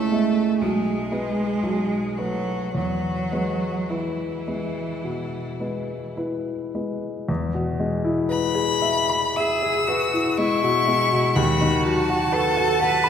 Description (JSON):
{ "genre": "classical, slow romantic movement for piano trio", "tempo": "52-63 BPM", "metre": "4/4", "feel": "rubato", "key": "E major", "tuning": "A4 = 439 Hz", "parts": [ { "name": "clear violin", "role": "melody", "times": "0.0-13.1 s", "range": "E4 to E6", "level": "-26 LUFS", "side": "left 5 dB", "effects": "none" }, { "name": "bright cello", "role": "second line", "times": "0.0-13.1 s", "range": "E3 to B4", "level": "-25 LUFS", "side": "right 5 dB", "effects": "none" }, { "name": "warm baby grand piano", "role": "accompaniment", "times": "0.0-13.1 s", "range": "B1 to B5", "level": "-23 LUFS", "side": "left 1 dB", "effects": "none" } ], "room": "wet church reverb, RT60 2.5 s", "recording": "recorded in a church or concert hall", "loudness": "-21 LUFS", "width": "side -8 dB against mid", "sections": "0.0-7.3 A section; 7.3-13.1 A section", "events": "none", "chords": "0.0 C#m; 0.6 G#m/B; 1.6 B5; 2.8 E; 11.4 B7/D#" }